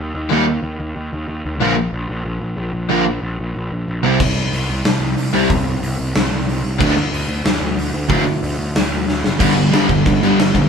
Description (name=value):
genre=punk rock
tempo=185 BPM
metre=4/4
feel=straight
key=unclear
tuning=A4 = 439 Hz
part: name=fuzz picked electric bass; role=bass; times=0.0-10.7 s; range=F#1 to E2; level=-21 LUFS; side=equal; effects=overdrive
part: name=raw garage guitar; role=riff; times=0.3-10.7 s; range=G2 to F4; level=-18 LUFS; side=left 6 dB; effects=overdrive
part: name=sludgy distorted guitar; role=riff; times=0.3-10.7 s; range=G2 to Eb4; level=-17 LUFS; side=right 6 dB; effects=overdrive
part: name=big rock drum kit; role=drums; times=4.2-10.6 s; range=crash cymbal, hi-hat, kick drum, snare drum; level=-18 LUFS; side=left 1 dB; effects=none
room=moderate studio reverb, RT60 0.7 s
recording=band playing live in one room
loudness=-15 LUFS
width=side -6 dB against mid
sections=0.0-9.4 A section; 9.4-10.7 B section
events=half time 0.0-9.4; drum fill 9.1-9.4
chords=0.0 Eb5; 1.6 Bb5; 4.0 C5; 6.8 D; 9.4 G5